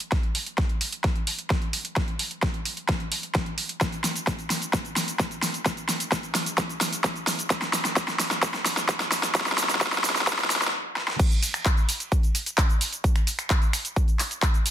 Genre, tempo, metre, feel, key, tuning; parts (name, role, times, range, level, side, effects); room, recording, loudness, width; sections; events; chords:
EDM; 130 BPM; 4/4; straight
big-room dance drum kit; drums; 0.0-14.7 s; cabasa, crash cymbal, finger snaps, handclaps, hi-hat, snare drum; -25 LUFS; equal; overdrive, small room ambience
electronic kick drum; drums; 0.1-14.5 s; -24 LUFS; equal; overdrive, small room ambience
moderate digital room reverb, RT60 1.0 s; dense, heavily limited modern master, high-pass filter; -23 LUFS; side -10 dB against mid
0.0-11.2 A section; 11.2-14.7 B section
build-up 0.0-11.2; drum fill 0.0-10.7, 11.0; stop 10.7-11.2; drop 11.2-14.7